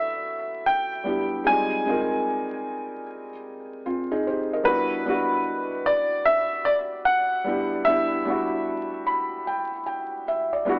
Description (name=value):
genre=lo-fi hip hop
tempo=75 BPM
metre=4/4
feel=swing 64% on 16ths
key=unclear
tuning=A4 = 440 Hz
part: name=bright upright piano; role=melody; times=0.0-10.2 s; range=B4 to Ab5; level=-23 LUFS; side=equal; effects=low-pass filter
part: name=felt-muted upright piano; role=accompaniment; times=0.0-10.8 s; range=F#3 to B5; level=-26 LUFS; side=equal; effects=cassette tape, low-pass filter
room=light reverb, studio reverb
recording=vinyl crackle, AM radio sound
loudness=-22 LUFS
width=side -26 dB against mid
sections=0.0-10.8 A section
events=felt piano fill 8.7-10.8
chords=0.0 Em7; 1.5 Fm7; 4.7 Em9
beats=0.66 | 1.46 2.26 3.06 3.86 | 4.66 5.46 6.26 7.06 | 7.86 8.66 9.46 10.26